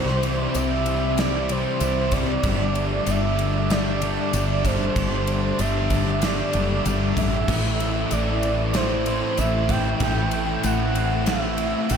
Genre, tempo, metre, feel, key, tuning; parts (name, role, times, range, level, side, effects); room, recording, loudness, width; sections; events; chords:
rock, shoegaze and dream pop; 95 BPM; 4/4; straight; A4 = 440 Hz
reedy FM lead; melody; 0.0-12.0 s; C5 to G5; -27 LUFS; right 2 dB; chorus, tremolo, ping-pong delay
cranked stack guitar; riff; 0.0-12.0 s; A2 to G4; -27 LUFS; right 9 dB; overdrive, reverse reverb
thick fuzz guitar; riff; 0.0-12.0 s; G2 to C4; -26 LUFS; left 10 dB; distortion, ensemble chorus
woody fretless electric bass; bass; 0.0-12.0 s; F#1 to C2; -26 LUFS; equal
gated 80s drum kit; drums; 0.1-12.0 s; crash cymbal, kick drum, ride cymbal, snare drum; -29 LUFS; equal
tambourine; percussion; 0.5-12.0 s; -38 LUFS; left 14 dB
moderate lush hall reverb, RT60 2.6 s; dreamy mix soaked in reverb; -20 LUFS; side -7 dB against mid
0.0-12.0 A section
0.0 C; 2.4 Gsus2; 7.5 Am7